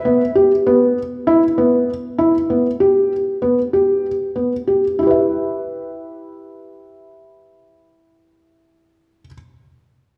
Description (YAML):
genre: contemporary instrumental, contemporary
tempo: 192 BPM (eighths)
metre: 7/8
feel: uneven beats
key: E minor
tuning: A4 = 440 Hz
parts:
  - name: felt-muted upright piano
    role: arpeggios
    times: 0.1-9.3 s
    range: B3 to E5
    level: -17 LUFS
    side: equal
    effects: none
room: wet recital hall reverb, RT60 1.6 s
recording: dark, warm production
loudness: -17 LUFS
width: mono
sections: 0.7-5.0 A section; 5.0-9.4 B section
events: slowing down 0.7-5.0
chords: 0.0 Em; 0.7 E5; 2.8 G; 5.0 Em